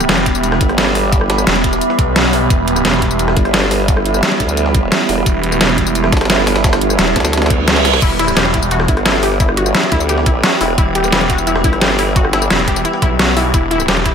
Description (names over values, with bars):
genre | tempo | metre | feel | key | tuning
dark technical drum and bass | 174 BPM | 4/4 | straight | E minor | A4 = 438 Hz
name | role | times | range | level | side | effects
metallic inharmonic drone | sustained chords | 0.0-14.1 s | E3 to F#5 | -20 LUFS | right 2 dB | chorus, built-in reverb, vintage 12-bit sampler grit, sidechain pumping
phased detuned saw bass | bass | 0.0-14.1 s | E1 to B1 | -18 LUFS | equal | phaser, overdrive, sidechain pumping
breakbeat sampler-style drum kit | drums | 0.0-14.1 s | hi-hat, snare drum | -24 LUFS | equal | none
dubstep drum kit | drums | 0.0-14.1 s | crash cymbal, hi-hat, rim click, snare drum, tambourine | -16 LUFS | equal | none
ethereal airy pad | texture | 0.0-14.1 s | B3 to B5 | -21 LUFS | right 3 dB | ensemble chorus, built-in reverb, sidechain pumping
electronic kick drum | drums | 0.3-14.1 s | none | -16 LUFS | equal | none
formant-sweep wobble bass | bass | 0.6-12.5 s | E1 to D2 | -18 LUFS | equal | chorus
reverse cymbal | sound effects | 7.5-8.0 s | none | -19 LUFS | right 7 dB | none
wide unison pluck | arpeggios | 8.0-14.1 s | E4 to G4 | -19 LUFS | left 3 dB | cassette tape, sidechain pumping, tape echo
room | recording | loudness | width
light reverb | none | -11 LUFS | side -7 dB against mid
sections
0.0-14.1 A section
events
reverse cymbal 7.5-8.0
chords
0.0 Em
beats
0.09 0.43 0.78 | 1.12 1.47 1.81 2.16 | 2.50 2.85 3.19 3.54 | 3.88 4.23 4.57 4.92 | 5.26 5.61 5.95 6.30 | 6.64 6.99 7.33 7.68 | 8.02 8.37 8.71 9.06 | 9.40 9.74 10.09 10.44 | 10.78 11.12 11.47 11.81 | 12.16 12.50 12.85 13.19 | 13.54 13.88